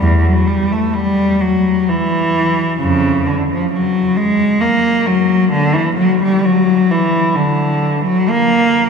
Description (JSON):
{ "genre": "classical, baroque-style suite movement for unaccompanied cello", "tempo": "65 BPM", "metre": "3/4", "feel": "rubato", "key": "unclear", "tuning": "A4 = 440 Hz", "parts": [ { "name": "rich cello", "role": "solo", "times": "0.0-8.9 s", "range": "E2 to A#3", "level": "-12 LUFS", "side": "equal", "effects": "none" } ], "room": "wet cathedral reverb, RT60 7.0 s", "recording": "recorded in a church or concert hall", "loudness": "-12 LUFS", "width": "side -6 dB against mid", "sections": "0.0-8.9 A section", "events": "none", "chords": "none" }